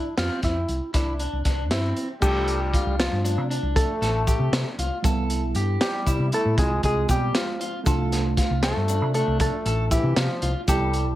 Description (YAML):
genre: progressive instrumental, band music in an uneven meter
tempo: 234 BPM (eighths)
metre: 11/8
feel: straight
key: unclear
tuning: A4 = 441 Hz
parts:
  - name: hollow-body jazz guitar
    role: melody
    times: 0.0-11.2 s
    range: D4 to A4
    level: -28 LUFS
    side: equal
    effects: plate reverb
  - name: electric guitar through a small old amp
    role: arpeggios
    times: 0.0-11.1 s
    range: C4 to A4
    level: -31 LUFS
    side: left 1 dB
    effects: spring reverb, plate reverb
  - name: hollow-body short-scale fingered electric bass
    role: bass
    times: 0.2-11.2 s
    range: A1 to C3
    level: -25 LUFS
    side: equal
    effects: none
  - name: crunchy breakbeat drum kit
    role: drums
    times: 0.2-11.1 s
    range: crash cymbal, hi-hat, kick drum, snare drum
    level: -26 LUFS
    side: equal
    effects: none
  - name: growling trombone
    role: second line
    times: 2.2-11.2 s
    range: E3 to A3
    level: -31 LUFS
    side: left 4 dB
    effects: plate reverb
  - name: tine electric piano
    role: accompaniment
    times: 2.2-11.2 s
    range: G3 to F4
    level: -32 LUFS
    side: right 5 dB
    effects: phaser
  - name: egg shaker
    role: percussion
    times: 2.2-10.9 s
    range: none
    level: -38 LUFS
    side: left 7 dB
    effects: none
room: light reverb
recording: none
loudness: -21 LUFS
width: side -14 dB against mid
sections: 0.0-2.2 A section; 2.2-11.2 B section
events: none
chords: 0.0 Fmaj7(no3); 0.9 C; 2.2 Dm/C; 5.0 Em; 6.6 Fm/C; 7.9 Dm/C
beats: 0.17 0.43 0.69 0.94 1.20 1.45 1.71 1.97 | 2.22 2.48 2.73 2.99 3.25 3.50 3.76 4.02 4.27 4.53 4.79 | 5.04 5.30 5.55 5.81 6.07 6.32 6.58 6.84 7.09 7.35 7.61 | 7.86 8.12 8.38 8.63 8.89 9.14 9.40 9.66 9.91 10.17 10.43 | 10.68 10.94